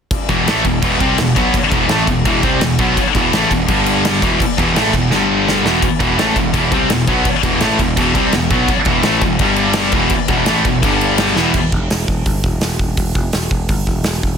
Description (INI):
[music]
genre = heavy metal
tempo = 168 BPM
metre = 4/4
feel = straight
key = E minor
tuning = A4 = 440 Hz
[part]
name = big rock drum kit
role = drums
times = 0.1-14.3 s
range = crash cymbal, hi-hat, kick drum, snare drum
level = -18 LUFS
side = equal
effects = none
[part]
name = heavy high-gain guitar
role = riff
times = 0.3-11.5 s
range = E2 to C4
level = -17 LUFS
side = left 14 dB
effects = distortion
[part]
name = scooped high-gain guitar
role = riff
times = 0.3-11.5 s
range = E2 to C4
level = -18 LUFS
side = right 11 dB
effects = distortion
[part]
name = thick fuzz guitar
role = riff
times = 0.3-11.6 s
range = E2 to C4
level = -22 LUFS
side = equal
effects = distortion
[part]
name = overdriven picked electric bass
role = bass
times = 0.3-14.4 s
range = E1 to C2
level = -21 LUFS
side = equal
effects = none
[sound]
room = studio reverb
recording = dense, heavily limited modern master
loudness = -12 LUFS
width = side -7 dB against mid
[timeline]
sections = 0.1-11.6 A section; 11.6-14.4 B section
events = drum fill 5.1-5.8, 11.4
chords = 0.1 Em; 3.7 G5; 4.2 E5; 5.1 G5; 5.7 Em; 9.4 G5; 9.9 E5; 10.8 G5; 11.4 E5; 11.6 Em